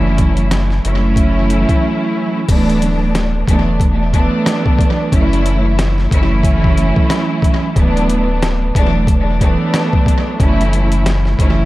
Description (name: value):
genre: hip hop, boom-bap hip-hop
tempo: 91 BPM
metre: 4/4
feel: swing 59% on 16ths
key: unclear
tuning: A4 = 440 Hz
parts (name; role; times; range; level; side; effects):
- warm studio string section; accompaniment; 0.0-11.7 s; E3 to E4; -16 LUFS; right 2 dB; high-pass filter, low-pass filter, tape echo
- warm sub bass; bass; 0.0-11.7 s; D1 to F#1; -16 LUFS; equal; none
- boom bap sampler-style drum kit; drums; 0.2-11.6 s; crash cymbal, hi-hat, kick drum, rim click, snare drum; -16 LUFS; equal; tape echo
room: digital ambience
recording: echo-heavy mix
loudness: -12 LUFS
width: side -17 dB against mid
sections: 0.0-2.5 A section; 2.5-11.7 B section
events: break 1.8-2.5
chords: 0.0 F#m7; 2.5 D69; 5.1 F#m7; 7.8 D69; 10.4 F#m7